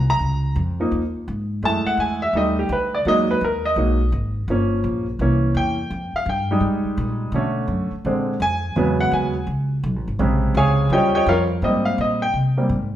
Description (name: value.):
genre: jazz, big band swing.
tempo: 168 BPM.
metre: 4/4.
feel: swing 64% on 8ths.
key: Ab major.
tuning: A4 = 440 Hz.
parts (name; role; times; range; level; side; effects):
clear baby grand piano; accompaniment; 0.0-12.7 s; C3 to Bb5; -20 LUFS; equal; none.
upright bass; bass; 0.0-13.0 s; G1 to C3; -23 LUFS; equal; none.
room: wet large studio reverb, RT60 1.1 s.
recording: band playing live in one room.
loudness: -18 LUFS.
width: side -12 dB against mid.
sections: 0.2-11.6 A section; 11.6-13.0 A section.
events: grand piano solo 0.0-11.6, 11.6-13.0.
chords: 0.2 Db69; 1.6 Gbm9; 2.4 B7alt; 3.1 Emaj9#11; 4.5 Gm7b5; 5.2 C7b9; 5.9 Fm9; 7.3 Bm7; 8.1 Bb9; 8.8 Amaj13 (rootless); 10.2 Bbm9; 10.9 Eb9; 11.6 Abmaj7.